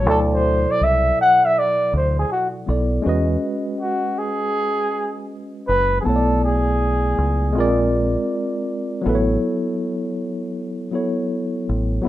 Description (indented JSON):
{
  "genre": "hip hop",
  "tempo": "80 BPM",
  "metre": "4/4",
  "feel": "swing 65% on 16ths",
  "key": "E major",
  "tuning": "A4 = 440 Hz",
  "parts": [
    { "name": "trumpet with bucket mute", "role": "melody", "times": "0.0-7.9 s", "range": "F#4 to F#5", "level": "-19 LUFS", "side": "equal", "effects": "none" },
    { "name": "tine electric piano", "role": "accompaniment", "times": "0.0-12.1 s", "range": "B2 to D#5", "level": "-22 LUFS", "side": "equal", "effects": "fast stereo tremolo" },
    { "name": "deep dub fingered electric bass", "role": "bass", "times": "0.0-12.0 s", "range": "F#1 to E2", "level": "-20 LUFS", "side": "equal", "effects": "none" }
  ],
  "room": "wet small room reverb, RT60 0.5 s",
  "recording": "rough home demo mix",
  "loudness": "-18 LUFS",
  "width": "side -14 dB against mid",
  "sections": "0.0-3.1 A section; 3.1-12.1 B section",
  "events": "muted trumpet solo 0.0-3.1",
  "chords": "0.1 D9; 3.1 Emaj9 (rootless); 6.1 Bm9; 7.6 A#9; 9.1 A69"
}